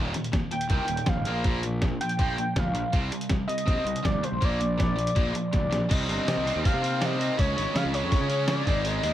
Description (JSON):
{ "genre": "indie rock", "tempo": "162 BPM", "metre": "4/4", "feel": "straight", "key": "unclear", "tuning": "A4 = 441 Hz", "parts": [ { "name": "biting overdriven guitar", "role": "riff", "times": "0.0-9.1 s", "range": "Eb2 to Db4", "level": "-30 LUFS", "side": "equal", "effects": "spring reverb" }, { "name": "fuzz fingered electric bass", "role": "bass", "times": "0.0-9.1 s", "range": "Eb1 to Db3", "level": "-30 LUFS", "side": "equal", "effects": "overdrive" }, { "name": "lo-fi sampler-style drum kit", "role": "drums", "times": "0.1-9.1 s", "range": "crash cymbal, hi-hat, kick drum, snare drum", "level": "-28 LUFS", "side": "equal", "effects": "none" }, { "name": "lead with added fifth", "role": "melody", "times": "0.5-9.1 s", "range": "C5 to G5", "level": "-30 LUFS", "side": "equal", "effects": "chorus, plate reverb" }, { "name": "string machine, cellos", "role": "sustained chords", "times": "5.9-9.1 s", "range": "Ab3 to Db5", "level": "-40 LUFS", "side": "equal", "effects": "none" } ], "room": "light reverb", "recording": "none", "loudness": "-24 LUFS", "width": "side -12 dB against mid", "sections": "0.0-5.9 A section; 5.9-9.1 B section", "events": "drum fill 5.5-5.9", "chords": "0.0 Eb; 1.3 Bb; 2.9 Cm; 4.4 Bb; 5.9 Cm7; 7.4 Db" }